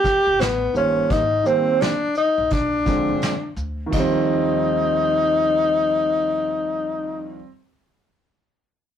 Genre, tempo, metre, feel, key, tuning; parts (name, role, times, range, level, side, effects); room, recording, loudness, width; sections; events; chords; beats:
hip hop, jazz-hop; 85 BPM; 4/4; swing 64% on 16ths; Eb major; A4 = 445 Hz
breathy tenor saxophone; melody; 0.0-7.4 s; B3 to G4; -19 LUFS; left 2 dB
vintage brush drum kit; drums; 0.0-4.1 s; crash cymbal, hi-hat, kick drum, shaker, snare drum; -26 LUFS; equal
upright bass; bass; 0.3-7.4 s; F1 to Eb2; -33 LUFS; right 1 dB
dark baby grand piano; accompaniment; 0.7-7.5 s; D3 to C5; -24 LUFS; right 3 dB
moderate small room ambience, RT60 0.5 s; rough rehearsal-room recording, warm saturation; -18 LUFS; side -9 dB against mid
0.0-3.9 A section; 3.9-6.7 B section
0.4 Aadd9; 1.1 Abmaj9; 2.5 Bb7; 3.9 Eb69
0.40 | 1.10 1.81 2.51 3.22 | 3.92 4.63 5.34 6.04